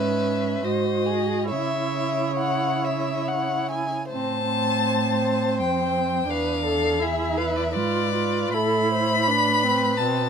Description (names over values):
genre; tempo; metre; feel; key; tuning
classical, slow romantic movement for string quartet; 65-86 BPM; 3/4; rubato; C# minor, A minor from 4.1 s; A4 = 440 Hz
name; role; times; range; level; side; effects
rich violin; melody; 0.0-10.3 s; C#5 to B5; -26 LUFS; left 4 dB; none
warm violin; second line; 0.0-10.3 s; G#4 to G#5; -27 LUFS; left 2 dB; none
warm viola; accompaniment; 0.0-10.3 s; C4 to F#4; -27 LUFS; right 3 dB; none
rich cello; bass; 0.0-10.3 s; E2 to C#3; -28 LUFS; right 6 dB; none
room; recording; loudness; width
light reverb; minimal, uncompressed stereo recording; -21 LUFS; side -7 dB against mid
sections
0.0-4.1 A section; 4.1-10.3 B section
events
none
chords
0.0 C#m/G#; 0.6 G#7; 1.5 C#m; 4.1 Am; 6.3 E7b9; 8.5 Am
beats
0.63 | 1.51 2.41 3.28 | 4.13 4.88 5.60 | 6.30 7.02 7.75 | 8.54 9.28 10.00